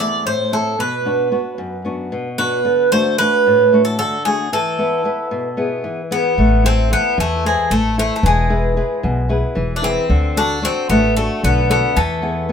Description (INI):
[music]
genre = greek folk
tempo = 225 BPM (eighths)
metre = 7/8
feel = straight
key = A harmonic minor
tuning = A4 = 438 Hz
[part]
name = Greek bouzouki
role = melody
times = 0.0-12.5 s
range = G#3 to D5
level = -17 LUFS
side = right 1 dB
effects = none
[part]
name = flamenco guitar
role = accompaniment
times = 0.0-12.5 s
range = E2 to C5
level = -20 LUFS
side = left 2 dB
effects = none
[part]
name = upright bass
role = bass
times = 6.4-12.5 s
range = E1 to E2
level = -18 LUFS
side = equal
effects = none
[sound]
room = moderate small room reverb, RT60 0.5 s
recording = minimal, uncompressed stereo recording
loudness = -15 LUFS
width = side -7 dB against mid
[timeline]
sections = 0.0-6.4 A section; 6.4-12.5 A section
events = none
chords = 0.0 Am; 0.8 Bm; 2.6 D; 4.5 E; 6.4 Am; 8.2 E; 10.1 D; 12.0 E